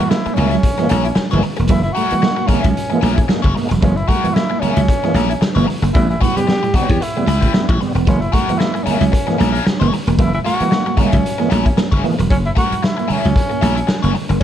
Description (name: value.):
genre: funk.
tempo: 113 BPM.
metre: 4/4.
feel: swing 56% on 16ths.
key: F# mixolydian.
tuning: A4 = 445 Hz.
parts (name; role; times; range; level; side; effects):
breathy tenor saxophone; melody; 0.0-14.4 s; C#4 to G4; -22 LUFS; equal; none.
bright tonewheel organ; stabs; 0.0-12.2 s; A2 to B3; -22 LUFS; right 2 dB; chorus vibrato, fast rotary speaker, slapback echo.
dry thumbed slap bass; bass; 0.0-14.4 s; E1 to E2; -17 LUFS; equal; none.
biting overdriven guitar; accompaniment; 0.1-14.4 s; C#4 to C#5; -25 LUFS; left 6 dB; wah.
raw garage drum kit; drums; 0.1-14.4 s; hi-hat, kick drum, snare drum; -18 LUFS; equal; none.
congas; percussion; 0.1-14.3 s; none; -26 LUFS; right 4 dB; none.
clean electric guitar; riff; 0.3-14.4 s; F#3 to B3; -24 LUFS; right 4 dB; tremolo.
room: light reverb.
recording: dark, warm production.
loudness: -13 LUFS.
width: side -10 dB against mid.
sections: 0.0-14.4 A section.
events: none.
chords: 0.0 F#9; 5.9 A9; 8.1 F#9.